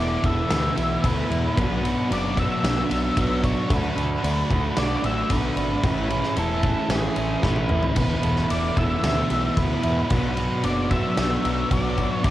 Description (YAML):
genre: rock, shoegaze and dream pop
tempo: 112 BPM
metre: 4/4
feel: straight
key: unclear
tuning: A4 = 440 Hz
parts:
  - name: octave-fuzz lead guitar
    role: melody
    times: 0.0-12.3 s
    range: G#4 to E5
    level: -29 LUFS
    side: equal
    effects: distortion, cassette tape, analog delay
  - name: electric guitar at the edge of break-up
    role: arpeggios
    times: 0.0-12.3 s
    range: E3 to A4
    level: -32 LUFS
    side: right 4 dB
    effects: ensemble chorus, cassette tape, analog delay
  - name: overdriven electric guitar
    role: riff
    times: 0.0-12.3 s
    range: E2 to F#4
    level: -28 LUFS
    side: right 5 dB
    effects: reverse reverb, cassette tape
  - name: thick fuzz guitar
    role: riff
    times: 0.0-12.3 s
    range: E2 to D4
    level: -27 LUFS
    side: left 5 dB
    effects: distortion, lush chorus, cassette tape
  - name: growling picked electric bass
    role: bass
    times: 0.0-12.3 s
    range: E1 to E2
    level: -27 LUFS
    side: equal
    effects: overdrive
  - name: huge arena drum kit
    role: drums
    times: 0.2-12.3 s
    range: kick drum, ride cymbal, snare drum, splash cymbal, toms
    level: -26 LUFS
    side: equal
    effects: none
room: light reverb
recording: home recording on cassette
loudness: -20 LUFS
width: side -14 dB against mid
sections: 0.0-12.3 A section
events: drum fill 7.4-8.0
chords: 0.0 Esus4; 1.6 Bm; 3.7 D6; 5.8 Amaj7; 8.0 Esus4; 10.1 Bm